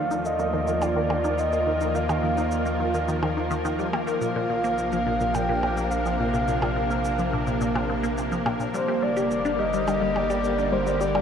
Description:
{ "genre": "ambient, sequencer-driven space music", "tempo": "106 BPM", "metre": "4/4", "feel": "straight", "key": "unclear", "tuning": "A4 = 442 Hz", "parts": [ { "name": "breathy flute-like synth lead", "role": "melody", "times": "0.0-11.2 s", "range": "C5 to G5", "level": "-27 LUFS", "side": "equal", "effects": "chorus, tape echo" }, { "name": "evolving wavetable pad", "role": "sustained chords", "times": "0.0-11.2 s", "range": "C3 to Bb4", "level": "-27 LUFS", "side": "equal", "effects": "ensemble chorus, built-in reverb" }, { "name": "resonant blip pluck", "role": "riff", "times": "0.0-11.2 s", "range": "Bb2 to G4", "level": "-29 LUFS", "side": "left 2 dB", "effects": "chorus, phaser, tape echo" }, { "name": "round analog bass", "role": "bass", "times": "0.0-11.2 s", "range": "G1 to Eb2", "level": "-32 LUFS", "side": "equal", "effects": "none" }, { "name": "cabasa and percussion blips", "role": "percussion", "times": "0.1-11.2 s", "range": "none", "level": "-36 LUFS", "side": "right 2 dB", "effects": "overdrive, tape echo" } ], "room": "wet huge ambient reverb, RT60 8.3 s", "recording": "cassette tape", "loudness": "-22 LUFS", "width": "side -7 dB against mid", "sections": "0.0-11.2 A section", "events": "none", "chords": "0.0 Ebsus2; 4.2 Bbadd9; 8.7 Gm", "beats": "0.25 0.82 1.39 | 1.95 2.52 3.08 3.65 | 4.21 4.78 5.35 5.91 | 6.48 7.04 7.61 8.18 | 8.74 9.31 9.88 10.44 | 11.01" }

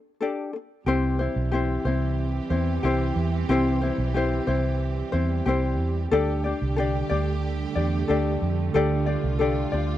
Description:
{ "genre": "acoustic pop", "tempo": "91 BPM", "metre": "4/4", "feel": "straight", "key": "C major", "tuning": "A4 = 441 Hz", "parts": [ { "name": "ukulele", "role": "accompaniment", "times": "0.0-10.0 s", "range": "C4 to D5", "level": "-25 LUFS", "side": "left 4 dB", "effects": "none" }, { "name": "warm studio string section", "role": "sustained chords", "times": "0.9-10.0 s", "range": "D3 to G4", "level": "-32 LUFS", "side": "right 8 dB", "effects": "none" }, { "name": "vintage muted fingered electric bass", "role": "bass", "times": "0.9-10.0 s", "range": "B1 to F2", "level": "-26 LUFS", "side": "right 1 dB", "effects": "none" } ], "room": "small room reverb", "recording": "dry, close 1970s-style studio recording", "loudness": "-22 LUFS", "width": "side -12 dB against mid", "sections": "0.9-10.0 A section", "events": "none", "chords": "0.0 Gsus2; 0.9 C; 6.1 Gsus2", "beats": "0.21 | 0.87 1.52 2.18 2.84 | 3.49 4.15 4.81 5.46 | 6.12 6.77 7.43 8.09 | 8.74 9.40" }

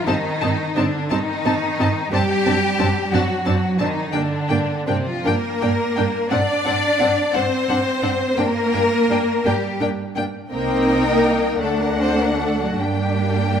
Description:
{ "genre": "classical, slow romantic movement for string orchestra", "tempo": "49-61 BPM (dotted quarters)", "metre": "6/8", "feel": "rubato", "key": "G minor", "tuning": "A4 = 440 Hz", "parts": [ { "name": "rich symphonic violin section", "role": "second line", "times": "0.0-13.6 s", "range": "C4 to D5", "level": "-22 LUFS", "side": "left 3 dB", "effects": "none" }, { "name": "rich symphonic cello section", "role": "bass", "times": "0.0-13.6 s", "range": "C3 to D4", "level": "-24 LUFS", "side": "right 3 dB", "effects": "none" }, { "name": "rich symphonic violin section", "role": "melody", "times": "0.1-13.6 s", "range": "F#5 to A5", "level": "-28 LUFS", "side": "left 5 dB", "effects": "none" }, { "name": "warm symphonic viola section", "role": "accompaniment", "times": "0.1-13.6 s", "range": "A3 to Eb4", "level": "-23 LUFS", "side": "right 1 dB", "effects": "none" }, { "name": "warm symphonic double bass section", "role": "bass", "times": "0.1-13.6 s", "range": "C2 to G2", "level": "-26 LUFS", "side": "right 3 dB", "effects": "none" } ], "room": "moderate scoring stage reverb, RT60 1.6 s", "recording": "none", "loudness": "-17 LUFS", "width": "side -8 dB against mid", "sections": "0.0-13.6 A section", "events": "none", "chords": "0.1 Am7b5/G; 2.1 D7/F#; 4.1 Gm; 6.3 D7(no3)/G; 8.4 Gm; 10.5 Cm; 11.6 D; 12.8 Gm", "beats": "| 0.07 1.10 | 2.12 3.12 | 4.13 5.26 | 6.32 7.34 | 8.38 9.45 | 10.51 11.61 | 12.79" }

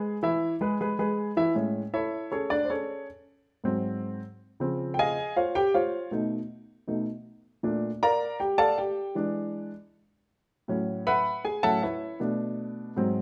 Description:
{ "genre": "jazz", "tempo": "158 BPM", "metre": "4/4", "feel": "straight", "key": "unclear", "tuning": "A4 = 441 Hz", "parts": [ { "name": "warm baby grand piano", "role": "solo", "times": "0.0-13.2 s", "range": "G#2 to B5", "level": "-28 LUFS", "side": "equal", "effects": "none" } ], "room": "moderate large studio reverb, RT60 0.9 s", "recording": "none", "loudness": "-29 LUFS", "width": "mono", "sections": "0.0-1.6 A section; 1.6-13.2 B section", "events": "grand piano solo 1.6-13.2", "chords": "0.0 E; 1.6 Amaj7; 3.1 G#7; 4.6 C#maj9; 6.1 B7; 7.6 Bbmaj7; 9.2 E7; 10.7 A69; 12.2 Bm7", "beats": "| 0.04 0.42 0.80 1.18 | 1.56 1.94 2.32 2.70 | 3.08 3.46 3.84 4.22 | 4.60 4.98 5.36 5.74 | 6.12 6.50 6.88 7.26 | 7.64 8.02 8.40 8.78 | 9.16 9.54 9.93 10.30 | 10.69 11.06 11.45 11.82 | 12.21 12.59 12.97" }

